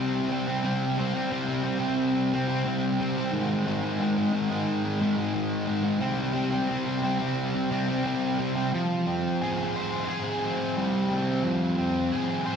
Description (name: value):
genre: rock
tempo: 89 BPM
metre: 4/4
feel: straight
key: unclear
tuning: A4 = 441 Hz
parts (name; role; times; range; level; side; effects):
- fuzz guitar; solo; 0.0-12.6 s; Ab2 to C5; -24 LUFS; equal; distortion, analog chorus, analog delay
room: wet concert hall reverb, RT60 2.1 s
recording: dark, warm production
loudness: -24 LUFS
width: side -7 dB against mid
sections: 0.0-8.7 A section; 8.7-12.6 B section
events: none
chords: 0.0 C5; 3.3 Ab5; 6.0 C5; 8.7 Fmadd9